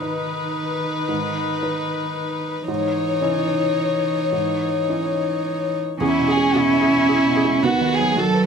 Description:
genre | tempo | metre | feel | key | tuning
neoclassical piano and strings | 111 BPM | 3/4 | rubato | C# minor | A4 = 440 Hz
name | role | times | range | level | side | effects
dark chamber violin section | melody | 0.0-8.4 s | E4 to C#5 | -23 LUFS | left 4 dB | none
warm cello | second line | 0.0-8.5 s | D#3 to C#4 | -22 LUFS | right 2 dB | none
felt-muted upright piano | accompaniment | 0.0-8.5 s | D#2 to E5 | -26 LUFS | right 3 dB | none
warm viola | accompaniment | 0.0-8.5 s | D#4 to G#4 | -28 LUFS | right 2 dB | none
room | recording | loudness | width
little or no reverb | close, detailed microphones | -18 LUFS | side -6 dB against mid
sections
0.0-6.0 A section; 6.0-8.5 B section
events
none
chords
0.0 G#m; 2.7 C#madd9/G#; 6.0 E; 7.6 B/D#

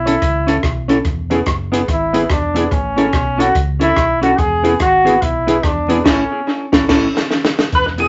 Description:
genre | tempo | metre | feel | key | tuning
ska | 144 BPM | 4/4 | swing 62% on 8ths | unclear | A4 = 444 Hz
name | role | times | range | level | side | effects
bright trombone | melody | 0.0-6.7 s | C#4 to G#4 | -19 LUFS | equal | none
fingered electric bass | bass | 0.0-8.1 s | E1 to C#2 | -25 LUFS | equal | none
mellow electric guitar | accompaniment | 0.1-8.1 s | B3 to A4 | -20 LUFS | equal | tape echo
warm upright piano | stabs | 0.1-7.1 s | B3 to A4 | -24 LUFS | equal | none
compact cocktail drum kit | drums | 0.1-8.1 s | crash cymbal, hi-hat, kick drum, rim click, snare drum | -21 LUFS | equal | tape echo
percussive tonewheel organ | melody | 7.7-8.1 s | G#4 to B4 | -16 LUFS | equal | overdrive, chorus vibrato, slow rotary speaker
room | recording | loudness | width
wet studio ambience, RT60 0.5 s | vinyl crackle, nothing above 7.8 kHz | -15 LUFS | mono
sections
0.0-7.7 A section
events
trombone solo 0.0-7.7; band accent 6.1-7.7; drum fill 6.9-7.7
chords
0.0 A; 1.1 E; 2.7 A; 4.4 E; 6.1 A

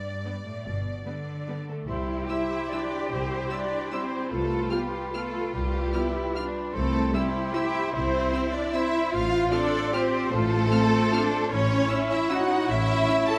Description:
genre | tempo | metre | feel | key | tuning
classical | 149 BPM | 3/4 | uneven beats, rubato | C major | A4 = 441 Hz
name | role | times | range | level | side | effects
clear studio violin section | melody | 0.0-13.2 s | D5 to F6 | -43 LUFS | equal | none
warm studio cello section | bass | 0.0-13.4 s | G2 to A4 | -33 LUFS | equal | none
warm studio violin section | second line | 0.3-13.4 s | D4 to A5 | -34 LUFS | equal | none
clear studio viola section | accompaniment | 0.3-13.4 s | G3 to A4 | -33 LUFS | equal | none
rich studio double bass section | bass | 0.7-13.0 s | G1 to C2 | -33 LUFS | equal | none
mellow hollow small flute group | second line | 1.7-13.4 s | G4 to A5 | -38 LUFS | equal | none
dark cor anglais | second line | 1.9-13.4 s | B4 to C#5 | -36 LUFS | equal | none
mellow clarinet | second line | 1.9-13.4 s | E4 to F4 | -38 LUFS | equal | none
dark French horn section | sustained chords | 2.3-13.2 s | G3 to F4 | -37 LUFS | equal | none
room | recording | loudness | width
moderate concert hall reverb, RT60 2.5 s | none | -26 LUFS | mono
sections
0.0-1.9 A section; 1.9-13.4 B section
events
none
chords
0.0 G; 1.9 C; 4.3 G7/C; 6.7 C; 9.1 F/A; 11.5 A

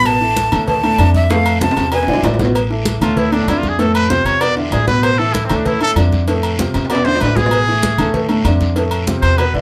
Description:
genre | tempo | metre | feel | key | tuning
latin, salsa | 193 BPM | 4/4 | straight | A harmonic minor | A4 = 441 Hz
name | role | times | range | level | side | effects
breathy bright jazz flute | melody | 0.0-2.2 s | E5 to A5 | -18 LUFS | equal | none
dark baby grand piano | accompaniment | 0.0-9.6 s | A2 to B4 | -21 LUFS | equal | none
upright bass | bass | 0.0-9.6 s | A1 to F2 | -21 LUFS | equal | none
agogo bells and timbales | percussion | 0.1-9.5 s | none | -27 LUFS | equal | none
congas | percussion | 0.1-9.6 s | none | -25 LUFS | equal | none
cowbell and bongos | percussion | 0.1-9.5 s | none | -27 LUFS | equal | none
guiro | percussion | 0.1-9.6 s | none | -34 LUFS | equal | none
bright trumpet | melody | 3.0-9.5 s | C4 to D5 | -20 LUFS | equal | none
room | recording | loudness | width
moderate studio reverb, RT60 0.6 s | band playing live in one room | -15 LUFS | mono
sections
0.0-2.5 A section; 2.5-9.6 B section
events
drum fill 1.3-2.5, 6.7-7.5; trumpet solo 2.5-9.6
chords
0.0 Asus2; 0.7 Dsus2; 1.3 F; 1.9 E7; 2.5 A5; 3.2 Dsus2; 3.8 F; 4.4 Asus2; 5.7 Dsus2; 6.3 F; 6.9 Asus2; 8.1 Dsus2; 8.8 F

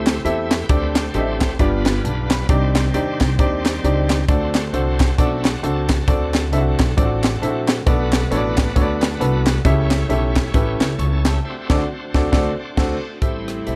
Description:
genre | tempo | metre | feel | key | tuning
uptempo gospel | 134 BPM | 4/4 | swing 59% on 8ths | unclear | A4 = 440 Hz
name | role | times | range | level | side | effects
clear grand piano | accompaniment | 0.0-13.8 s | G2 to C#6 | -24 LUFS | equal | none
bright tonewheel organ | sustained chords | 0.0-13.8 s | Eb3 to A5 | -32 LUFS | equal | slow rotary speaker, overdrive
upright bass | bass | 0.0-13.8 s | G1 to E2 | -24 LUFS | equal | none
crisp fusion drum kit | drums | 0.1-13.8 s | crash cymbal, hi-hat, kick drum, rim click, snare drum | -22 LUFS | equal | none
group handclap | percussion | 0.1-11.3 s | none | -33 LUFS | equal | none
bright studio string section | sustained chords | 13.2-13.8 s | G3 to E4 | -32 LUFS | equal | none
room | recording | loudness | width
small room ambience | none | -19 LUFS | mono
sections
0.0-13.2 A section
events
tonewheel organ fill 4.7-6.1; band accent 11.4-13.2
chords
0.0 Am7; 0.7 D7sus4; 1.6 G7; 2.5 Cmadd9; 4.3 D7; 7.9 Bm7; 9.7 A7; 11.4 D7; 13.2 Am7

